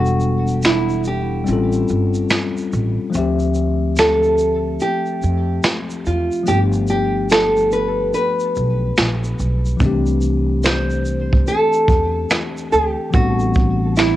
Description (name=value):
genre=lo-fi hip hop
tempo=72 BPM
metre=4/4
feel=swing 64% on 16ths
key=unclear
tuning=A4 = 440 Hz
part: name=nylon-string guitar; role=melody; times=0.0-14.2 s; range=E4 to C5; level=-19 LUFS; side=right 1 dB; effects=cassette tape, tape echo
part: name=tine electric piano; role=accompaniment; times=0.0-14.2 s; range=E3 to F#5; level=-22 LUFS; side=left 4 dB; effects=fast stereo tremolo
part: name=upright bass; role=bass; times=0.0-14.2 s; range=E1 to F2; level=-20 LUFS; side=right 1 dB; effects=none
part: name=vintage brush drum kit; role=drums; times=0.1-14.2 s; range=finger snaps, hi-hat, kick drum, shaker, snare drum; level=-19 LUFS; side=right 1 dB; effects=cassette tape
room=light reverb, small room ambience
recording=home recording on cassette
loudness=-15 LUFS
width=side -14 dB against mid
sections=0.0-14.2 A section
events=break 0.0-9.8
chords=0.0 Em11; 1.5 A7alt; 3.1 Dm11; 6.5 G9; 9.8 C69; 13.1 Am11